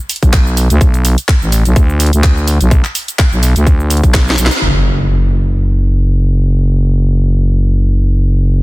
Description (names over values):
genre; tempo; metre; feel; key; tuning
bass house; 126 BPM; 4/4; swing 55% on 16ths; unclear; A4 = 439 Hz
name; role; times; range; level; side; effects
garage drum kit; drums; 0.1-4.6 s; handclaps, hi-hat, shaker, snare drum; -17 LUFS; equal; none
growling FM bass; bass; 0.2-8.6 s; F#1 to D2; -11 LUFS; equal; overdrive, sidechain pumping
electronic kick drum; drums; 0.2-4.2 s; none; -10 LUFS; equal; none
impact; sound effects; 4.6-6.5 s; none; -20 LUFS; equal; none
room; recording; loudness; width
digital ambience; dense, heavily limited modern master; -9 LUFS; side -20 dB against mid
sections
0.0-4.6 A section; 4.6-8.6 B section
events
drum fill 4.1-4.6; band accent 4.5; impact 4.6-6.5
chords
none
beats
0.33 | 0.81 1.28 1.76 2.24 | 2.71 3.19 3.67 4.14 | 4.62 5.09 5.57 6.05 | 6.52 7.00 7.48 7.95 | 8.43